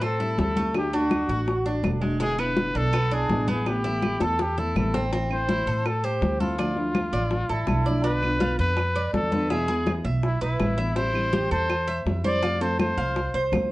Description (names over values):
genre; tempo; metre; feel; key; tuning
latin, Cuban son and guajira; 164 BPM; 4/4; straight; A minor; A4 = 444 Hz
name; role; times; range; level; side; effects
breathy trumpet; melody; 0.0-13.5 s; E4 to D5; -28 LUFS; left 1 dB; none
nylon-string guitar; accompaniment; 0.0-13.7 s; B2 to F#4; -30 LUFS; left 1 dB; none
Cuban tres; arpeggios; 0.0-13.7 s; G#3 to F5; -30 LUFS; right 2 dB; none
upright bass; bass; 0.0-13.7 s; E1 to A2; -28 LUFS; equal; none
bongos; percussion; 0.0-13.7 s; none; -32 LUFS; left 2 dB; none
claves; percussion; 0.0-13.7 s; none; -39 LUFS; right 6 dB; none
congas; percussion; 0.0-13.7 s; none; -30 LUFS; left 1 dB; none
room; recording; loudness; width
moderate studio reverb, RT60 0.8 s; worn, warbling old tape, cassette tape, warbly pitch drift, nothing above 10.5 kHz; -22 LUFS; side -18 dB against mid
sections
0.0-5.1 A section; 5.1-13.7 B section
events
drum fill 4.2-5.1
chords
0.0 Am7; 0.7 D; 2.2 E7; 3.7 Amadd9; 5.1 Am; 6.6 Dmadd9; 8.0 Bdim; 9.5 E; 11.0 Am7; 12.4 F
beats
0.02 0.38 | 0.75 1.11 1.48 1.84 | 2.21 2.57 2.94 3.30 | 3.67 4.03 4.39 4.76 | 5.12 5.49 5.85 6.22 | 6.58 6.95 7.31 7.68 | 8.04 8.41 8.77 9.14 | 9.50 9.87 10.23 10.60 | 10.96 11.33 11.70 12.06 | 12.43 12.79 13.16 13.53